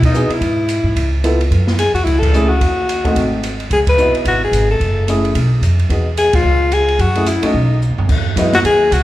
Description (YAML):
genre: jazz, small-group swing and bop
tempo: 219 BPM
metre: 4/4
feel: swing 60% on 8ths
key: E major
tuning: A4 = 440 Hz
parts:
  - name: clear alto saxophone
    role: melody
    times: 0.0-9.0 s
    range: D#4 to B4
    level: -16 LUFS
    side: left 2 dB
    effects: none
  - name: upright bass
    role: bass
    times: 0.0-9.0 s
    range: F#1 to B2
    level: -16 LUFS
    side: equal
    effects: none
  - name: open jazz drum kit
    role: drums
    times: 0.0-9.0 s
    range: crash cymbal, hi-hat, kick drum, ride cymbal, snare drum, toms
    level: -20 LUFS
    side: right 1 dB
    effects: none
  - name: warm upright piano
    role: accompaniment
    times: 0.1-8.5 s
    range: G#3 to A4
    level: -20 LUFS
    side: equal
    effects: none
room: moderate recital hall reverb, RT60 1.5 s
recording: recorded in a church or concert hall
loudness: -12 LUFS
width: side -15 dB against mid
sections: 0.0-8.1 A section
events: band accent 2.2, 3.8, 6.3; drum fill 7.8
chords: 0.4 E/G#; 1.0 C#7alt; 1.5 F#m9; 2.6 D#dim; 3.1 G#7b9; 3.7 C#m11; 4.8 F#m9; 5.3 N.C.; 5.9 Emaj7; 6.4 C#; 7.0 F#m7; 7.5 B; 8.1 Emaj9